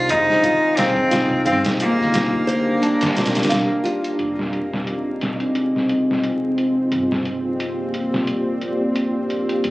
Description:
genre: trip hop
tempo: 88 BPM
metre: 4/4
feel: swing 56% on 16ths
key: unclear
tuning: A4 = 440 Hz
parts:
  - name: bright cello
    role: melody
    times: 0.0-3.8 s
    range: Bb3 to F4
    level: -20 LUFS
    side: equal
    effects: tape echo
  - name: deep dark ambient pad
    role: sustained chords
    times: 0.0-9.7 s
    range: Bb3 to F5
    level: -22 LUFS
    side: equal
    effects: chorus, built-in reverb
  - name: nylon-string guitar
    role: arpeggios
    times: 0.0-4.2 s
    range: D4 to F5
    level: -26 LUFS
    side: equal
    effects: ping-pong delay
  - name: upright bass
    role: bass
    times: 0.0-9.7 s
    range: F1 to D2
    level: -34 LUFS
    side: equal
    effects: none
  - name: trip hop sampler-style drum kit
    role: drums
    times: 0.1-9.7 s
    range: hi-hat, kick drum, snare drum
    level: -24 LUFS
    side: equal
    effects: low-pass filter on kick, studio ambience, low-pass filter on hats, low-pass filter on snare
  - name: bowed-like drone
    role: texture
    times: 5.0-9.7 s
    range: C4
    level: -27 LUFS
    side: equal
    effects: built-in reverb
room: light reverb, small room ambience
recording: recorded on a phone in the room, club reverb, vinyl crackle, compression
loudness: -17 LUFS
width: side -19 dB against mid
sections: 0.0-4.2 A section; 4.2-9.7 B section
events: none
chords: 0.0 Fm7; 1.5 Gm7; 4.2 Fm7; 6.9 Gm7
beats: 0.10 0.78 | 1.46 2.14 2.82 3.50 | 4.19 4.87 5.55 6.23 | 6.91 7.59 8.28 8.96 | 9.64

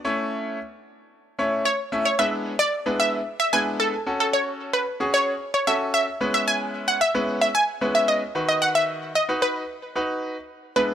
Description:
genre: pop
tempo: 112 BPM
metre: 4/4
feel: straight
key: unclear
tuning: A4 = 442 Hz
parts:
  - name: bright grand piano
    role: accompaniment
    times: 0.0-10.9 s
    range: D#3 to E5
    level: -26 LUFS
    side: left 1 dB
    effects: none
  - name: wide unison pluck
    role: melody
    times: 1.7-10.9 s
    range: A4 to G#5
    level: -22 LUFS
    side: equal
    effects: none
room: light reverb, small room ambience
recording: dry, gritty hardware recording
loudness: -21 LUFS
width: side -10 dB against mid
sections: 0.0-2.2 A section; 2.2-10.9 B section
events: none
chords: 0.0 A; 2.2 E7; 4.1 F#m; 6.2 C#m7; 8.4 B/D#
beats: | 0.05 0.58 1.12 1.66 | 2.19 2.73 3.26 3.80 | 4.33 4.87 5.41 5.94 | 6.48 7.01 7.55 8.08 | 8.62 9.15 9.69 10.23 | 10.76

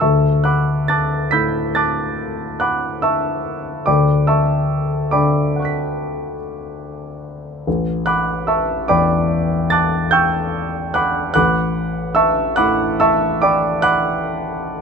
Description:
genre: classical, impressionist solo piano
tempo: 48 BPM (dotted quarters)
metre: 9/8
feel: rubato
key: D major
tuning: A4 = 440 Hz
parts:
  - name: warm grand piano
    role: solo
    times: 0.0-14.8 s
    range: A1 to B6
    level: -16 LUFS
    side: equal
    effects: none
room: light reverb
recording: close, detailed microphones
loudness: -15 LUFS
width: side -6 dB against mid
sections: 0.0-14.8 A section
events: none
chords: 0.0 Dmaj7; 7.7 A11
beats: | 0.02 1.34 2.62 | 3.88 5.14 6.39 | 7.67 8.91 10.15 | 11.36 12.58 13.83

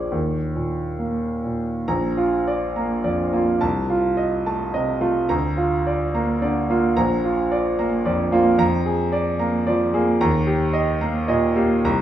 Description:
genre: classical, romantic character piece for solo piano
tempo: 67-76 BPM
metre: 2/4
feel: rubato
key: Bb major, Eb major from 8.6 s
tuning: A4 = 440 Hz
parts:
  - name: bright grand piano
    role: solo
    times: 0.0-12.0 s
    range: Bb1 to Bb5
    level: -19 LUFS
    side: right 1 dB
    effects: none
room: moderate recital hall reverb, RT60 1.4 s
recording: small room ambience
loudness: -19 LUFS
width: side -11 dB against mid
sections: 0.0-1.9 A section; 1.9-12.0 B section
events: none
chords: 0.1 Eb5; 1.9 Bb; 3.6 F7/C; 5.3 Bb/D; 7.0 Bb; 8.6 Bb7/F; 10.2 Eb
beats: | 0.12 1.00 | 1.88 2.76 | 3.61 4.46 | 5.29 6.14 | 6.97 7.78 | 8.60 9.40 | 10.21 11.01 | 11.84

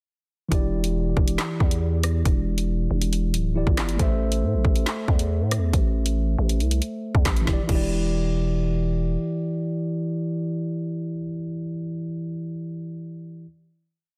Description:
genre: hip hop, drill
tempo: 138 BPM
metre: 4/4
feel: half-time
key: E minor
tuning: A4 = 440 Hz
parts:
  - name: mellow tine electric piano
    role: accompaniment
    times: 0.5-13.5 s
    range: E3 to E5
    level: -30 LUFS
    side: equal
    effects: low-pass filter
  - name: growling 808-style bass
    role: bass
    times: 0.5-9.2 s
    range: D1 to A2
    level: -26 LUFS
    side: equal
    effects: none
  - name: drill drum kit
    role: drums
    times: 0.5-7.8 s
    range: crash cymbal, handclaps, hi-hat, kick drum, rim click, snare drum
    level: -26 LUFS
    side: equal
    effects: none
room: digital ambience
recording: dense, heavily limited modern master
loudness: -24 LUFS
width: mono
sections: 0.5-7.5 verse; 7.5-11.0 final chord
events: none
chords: 0.5 Em7; 4.0 Am; 7.5 Em7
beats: | 0.52 0.95 1.39 1.82 | 2.25 2.69 3.12 3.56 | 3.99 4.43 4.86 5.30 | 5.73 6.17 6.60 7.04 | 7.47 7.91 8.34 8.78 | 9.21 9.65 10.08 10.52

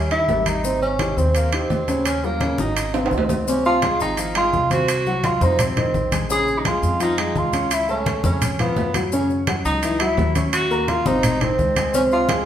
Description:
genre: Afro-Cuban jazz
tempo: 170 BPM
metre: 4/4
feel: straight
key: Ab major, Db major from 3.5 s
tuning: A4 = 439 Hz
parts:
  - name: warm tenor saxophone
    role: melody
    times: 0.0-12.4 s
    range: Bb3 to Ab4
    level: -22 LUFS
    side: right 1 dB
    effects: none
  - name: warm baby grand piano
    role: accompaniment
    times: 0.0-12.5 s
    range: C3 to Db6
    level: -23 LUFS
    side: equal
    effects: none
  - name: upright bass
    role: bass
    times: 0.0-12.4 s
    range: Ab1 to Gb2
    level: -26 LUFS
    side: equal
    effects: none
  - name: congas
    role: percussion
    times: 0.1-12.5 s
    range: none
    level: -26 LUFS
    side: left 2 dB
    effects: none
  - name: maracas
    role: percussion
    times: 0.1-12.5 s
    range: none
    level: -35 LUFS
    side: left 4 dB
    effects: none
  - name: timbales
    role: percussion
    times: 0.1-12.5 s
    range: none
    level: -27 LUFS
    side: right 4 dB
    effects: none
room: wet large studio reverb, RT60 1.2 s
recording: band playing live in one room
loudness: -18 LUFS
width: side -10 dB against mid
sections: 0.0-3.5 A section; 3.5-12.5 B section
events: drum fill 2.9-3.5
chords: 0.0 Eb(b9); 0.6 Abmaj7; 2.1 Ebm7; 2.8 Ab7; 3.5 Dbmaj9; 4.9 Cdim; 5.6 F5; 6.3 Bbm7; 7.7 Dbaug7; 9.1 Gb5; 10.5 Ebm7; 11.2 Ab; 11.9 Dbmaj7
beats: 0.29 | 0.64 1.00 1.35 1.70 | 2.06 2.41 2.77 3.12 | 3.47 3.83 4.18 4.53 | 4.89 5.24 5.59 5.95 | 6.30 6.65 7.00 7.36 | 7.71 8.06 8.42 8.77 | 9.12 9.47 9.83 10.18 | 10.53 10.88 11.23 11.59 | 11.94 12.29

